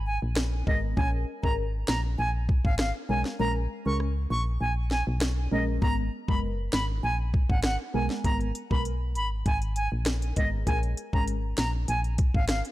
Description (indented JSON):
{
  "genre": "dancehall",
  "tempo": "99 BPM",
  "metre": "4/4",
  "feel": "straight",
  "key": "unclear",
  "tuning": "A4 = 440 Hz",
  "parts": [
    { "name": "solid FM bass", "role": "bass", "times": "0.0-12.6 s", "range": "F#1 to C#2", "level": "-29 LUFS", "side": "equal", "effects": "none" },
    { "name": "bright reedy concert flute", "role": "melody", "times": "0.1-12.6 s", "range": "D#5 to C#6", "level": "-32 LUFS", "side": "right 1 dB", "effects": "tape echo" },
    { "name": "island pop drum kit", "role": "drums", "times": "0.4-12.7 s", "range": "hi-hat, kick drum, rim click, snare drum", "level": "-28 LUFS", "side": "equal", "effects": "none" },
    { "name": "deep mellow chord stab", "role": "accompaniment", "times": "0.7-11.3 s", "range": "G#3 to A#4", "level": "-33 LUFS", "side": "left 1 dB", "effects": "chorus, phaser, sidechain pumping" }
  ],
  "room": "little or no reverb",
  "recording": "dark, warm production",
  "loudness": "-25 LUFS",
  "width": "side -16 dB against mid",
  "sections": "0.0-12.7 A section",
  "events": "kick muted 3.4-5.8",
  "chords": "0.0 G#madd9; 1.0 A#m7; 5.8 G#madd9; 10.7 A#m7",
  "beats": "0.37 | 0.97 1.58 2.19 2.79 | 3.40 4.00 4.61 5.21 | 5.82 6.43 7.03 7.64 | 8.24 8.85 9.46 10.06 | 10.67 11.28 11.88 12.49"
}